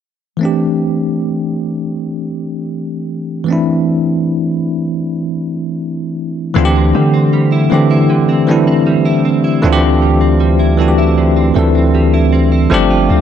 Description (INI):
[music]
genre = R&B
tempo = 78 BPM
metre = 4/4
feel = straight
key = unclear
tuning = A4 = 440 Hz
[part]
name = bell-like tine electric piano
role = accompaniment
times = 0.4-13.2 s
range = E3 to A4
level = -13 LUFS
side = left 1 dB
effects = medium stereo tremolo
[part]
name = direct-recorded clean electric guitar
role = arpeggios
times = 6.6-13.2 s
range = D3 to F4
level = -20 LUFS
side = right 6 dB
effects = analog chorus, tape echo
[part]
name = long sustained 808-style bass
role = bass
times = 6.6-13.2 s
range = G1 to D3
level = -14 LUFS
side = equal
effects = none
[sound]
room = light reverb, digital ambience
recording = dark, warm production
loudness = -11 LUFS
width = side -9 dB against mid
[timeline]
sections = 0.4-6.6 A section; 6.6-13.2 B section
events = none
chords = 0.4 D9sus4